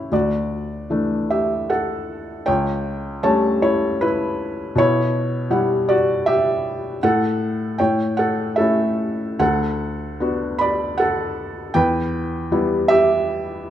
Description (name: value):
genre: classical, lyrical solo piano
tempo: 77 BPM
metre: 3/4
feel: uneven beats, rubato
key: D major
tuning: A4 = 441 Hz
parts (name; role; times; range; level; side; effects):
- felt-muted upright piano; solo; 0.0-13.7 s; C#2 to B5; -18 LUFS; equal; none
room: moderate recital hall reverb, RT60 1.4 s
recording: none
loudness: -18 LUFS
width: side -11 dB against mid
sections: 0.1-13.7 A section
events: none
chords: 0.1 Dadd9; 2.5 A7/C#; 4.8 Emadd9/B; 7.0 N.C.; 7.8 A; 9.4 D6; 11.8 Em